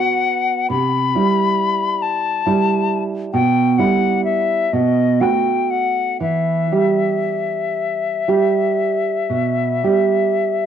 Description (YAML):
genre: romantic duo for flute and classical guitar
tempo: 35-46 BPM (dotted quarters)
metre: 12/8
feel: rubato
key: E minor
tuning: A4 = 439 Hz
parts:
  - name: concert flute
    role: melody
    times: 0.0-10.6 s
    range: D#5 to B5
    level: -19 LUFS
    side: left 7 dB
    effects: none
  - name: nylon-string guitar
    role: accompaniment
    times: 0.0-10.7 s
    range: B2 to G4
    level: -18 LUFS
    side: right 5 dB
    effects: cassette tape
room: light reverb, small room ambience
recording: home recording on cassette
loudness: -15 LUFS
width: side -9 dB against mid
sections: 0.0-10.7 A section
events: none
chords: 0.0 B5; 0.7 C; 3.3 Em/B; 4.7 B5; 6.2 Em